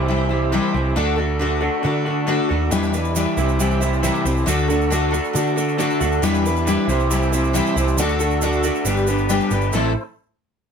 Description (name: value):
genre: folk rock and heartland rock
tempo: 137 BPM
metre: 4/4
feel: straight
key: unclear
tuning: A4 = 441 Hz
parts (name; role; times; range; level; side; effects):
- picked twelve-string acoustic guitar; accompaniment; 0.0-9.9 s; A2 to C5; -22 LUFS; left 5 dB; none
- tonewheel organ; sustained chords; 0.0-10.0 s; C4 to C5; -31 LUFS; right 2 dB; slow rotary speaker, overdrive, chorus vibrato
- electric guitar through a small old amp; riff; 0.0-9.9 s; E2 to A4; -22 LUFS; right 3 dB; wide subtle chorus
- hollow-body short-scale picked electric bass; bass; 0.0-9.9 s; G1 to D3; -22 LUFS; right 1 dB; none
- egg shaker; percussion; 2.7-9.9 s; none; -32 LUFS; right 8 dB; none
room: light reverb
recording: none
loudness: -17 LUFS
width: side -7 dB against mid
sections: 0.0-9.7 A section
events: none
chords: 0.0 C; 1.0 D; 2.7 Em7; 3.4 C; 4.5 D; 6.2 Em7; 6.9 C; 8.0 D; 8.9 G; 9.7 Am